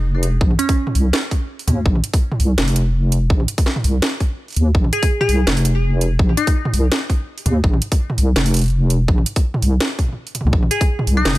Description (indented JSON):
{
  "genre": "half-time drum and bass",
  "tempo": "166 BPM",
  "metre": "4/4",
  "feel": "swing 55% on 16ths, half-time",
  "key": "Bb minor",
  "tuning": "A4 = 437 Hz",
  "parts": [
    { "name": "deep soft wobble bass", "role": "bass", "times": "0.0-11.4 s", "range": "F1 to Eb2", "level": "-16 LUFS", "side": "equal", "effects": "chorus" },
    { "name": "drum and bass drum kit", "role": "drums", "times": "0.2-11.4 s", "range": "hi-hat, snare drum, toms", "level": "-22 LUFS", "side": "right 1 dB", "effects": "overdrive, small room ambience" },
    { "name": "electronic kick drum", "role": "drums", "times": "0.4-10.9 s", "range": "none", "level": "-16 LUFS", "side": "equal", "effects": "overdrive, small room ambience" },
    { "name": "glassy wavetable pluck", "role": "melody", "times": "0.6-1.1, 4.9-6.9, 10.7-11.4 s", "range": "Db4 to Ab4", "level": "-23 LUFS", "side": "left 1 dB", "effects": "chorus, cassette tape, tape echo" }
  ],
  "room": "digital ambience",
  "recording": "none",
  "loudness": "-15 LUFS",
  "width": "side -17 dB against mid",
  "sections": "0.0-11.4 A section",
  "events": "none",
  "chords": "0.0 Bb5"
}